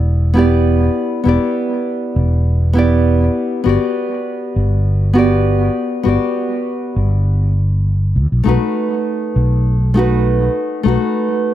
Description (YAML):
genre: sunset chillout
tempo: 100 BPM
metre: 4/4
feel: swing 54% on 16ths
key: E minor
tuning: A4 = 438 Hz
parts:
  - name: nylon-string guitar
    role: accompaniment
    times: 0.0-11.5 s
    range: A3 to D5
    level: -16 LUFS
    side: moving between left 4 dB and right 4 dB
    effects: auto-pan, analog delay
  - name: mellow fretless electric bass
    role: bass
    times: 0.0-11.0 s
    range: E1 to D2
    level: -14 LUFS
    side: equal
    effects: none
room: light reverb, small room ambience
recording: echo-heavy mix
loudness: -13 LUFS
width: side -12 dB against mid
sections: 0.0-11.5 A section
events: none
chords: 0.0 Em7; 3.7 Gmaj7; 8.5 B7